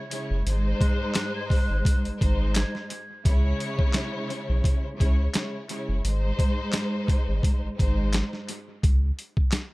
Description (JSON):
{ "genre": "hip hop, boom-bap hip-hop", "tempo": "86 BPM", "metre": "4/4", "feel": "swing 55% on 16ths", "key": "C# harmonic minor", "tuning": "A4 = 436 Hz", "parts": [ { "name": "warm studio string section", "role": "accompaniment", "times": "0.0-8.4 s", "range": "G#2 to C#5", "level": "-30 LUFS", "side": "equal", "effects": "high-pass filter, low-pass filter" }, { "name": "boom bap sampler-style drum kit", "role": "drums", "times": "0.1-9.7 s", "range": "handclaps, hi-hat, kick drum, snare drum", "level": "-24 LUFS", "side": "equal", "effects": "none" }, { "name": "warm sub bass", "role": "bass", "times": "0.3-9.1 s", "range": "F#1 to C#2", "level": "-24 LUFS", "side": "equal", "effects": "none" }, { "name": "mellow hollow silver concert flute", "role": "melody", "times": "0.8-2.9 s", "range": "F#6 to G#6", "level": "-38 LUFS", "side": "right 1 dB", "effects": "high-pass filter, low-pass filter, analog delay" } ], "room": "little or no reverb", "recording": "echo-heavy mix", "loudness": "-23 LUFS", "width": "side -21 dB against mid", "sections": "0.0-3.3 A section; 3.3-9.7 B section", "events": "none", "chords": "0.5 G#; 3.3 C#m; 6.0 G#; 8.8 N.C." }